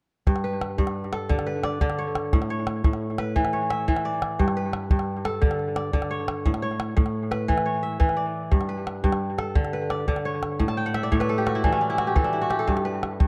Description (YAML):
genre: west african traditional, West African string and xylophone music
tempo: 116 BPM (dotted quarters)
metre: 12/8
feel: straight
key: G lydian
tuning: A4 = 437 Hz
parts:
  - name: kora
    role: arpeggios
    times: 0.3-13.3 s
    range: G2 to A5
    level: -27 LUFS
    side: equal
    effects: analog delay
  - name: calabash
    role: percussion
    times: 0.3-13.3 s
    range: none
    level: -26 LUFS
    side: equal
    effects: none
room: moderate spring reverb, RT60 1.7 s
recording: dark, warm production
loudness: -25 LUFS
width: mono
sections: 0.3-13.3 A section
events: kora fill 10.7-12.7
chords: 0.3 G; 2.3 A; 4.4 G; 6.5 A; 8.5 G; 10.6 A; 12.7 G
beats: | 0.27 0.79 1.30 1.81 | 2.33 2.85 3.36 3.88 | 4.39 4.91 5.42 5.94 | 6.45 6.97 7.49 8.01 | 8.52 9.04 9.56 10.08 | 10.60 11.12 11.63 12.15 | 12.68 13.20